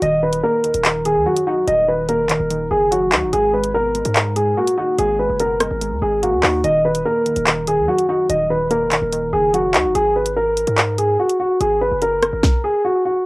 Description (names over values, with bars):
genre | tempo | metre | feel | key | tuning
hip hop, drill | 145 BPM | 4/4 | half-time | unclear | A4 = 439 Hz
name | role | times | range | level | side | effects
dark concert grand piano | melody | 0.0-13.2 s | Gb4 to Eb5 | -17 LUFS | equal | low-pass filter, plate reverb
warbly dusty pluck | accompaniment | 0.0-9.9 s | Eb3 to Eb4 | -25 LUFS | right 1 dB | chorus, low-pass filter, cassette tape
hard-hitting 808-style bass | bass | 0.0-12.4 s | Eb1 to Ab2 | -26 LUFS | equal | none
drill drum kit | drums | 0.0-12.5 s | handclaps, hi-hat, kick drum, rim click, snare drum | -18 LUFS | equal | cassette tape
room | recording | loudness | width
moderate small room ambience, RT60 0.5 s | home recording on cassette | -15 LUFS | side -23 dB against mid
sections
0.0-13.3 A section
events
none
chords
0.0 Ebm; 3.3 Abmadd9; 6.6 Ebm; 9.9 Absus2